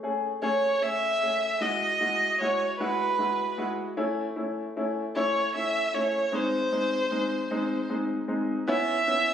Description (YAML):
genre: pop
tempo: 51 BPM (dotted quarters)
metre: 6/8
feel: straight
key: unclear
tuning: A4 = 440 Hz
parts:
  - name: clear upright piano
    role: accompaniment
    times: 0.0-9.3 s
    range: G#3 to G#4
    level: -29 LUFS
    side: left 1 dB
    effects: none
  - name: rich violin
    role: melody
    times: 0.4-9.3 s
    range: B4 to E5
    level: -26 LUFS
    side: right 1 dB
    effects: none
room: moderate plate reverb, RT60 2.6 s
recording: recorded on a phone in the room, studio reverb, compression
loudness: -25 LUFS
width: side -9 dB against mid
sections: 0.0-8.7 A section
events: none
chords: 0.0 Amaj7; 1.6 Eadd9/G#; 4.0 A; 6.3 G#; 8.7 C#m7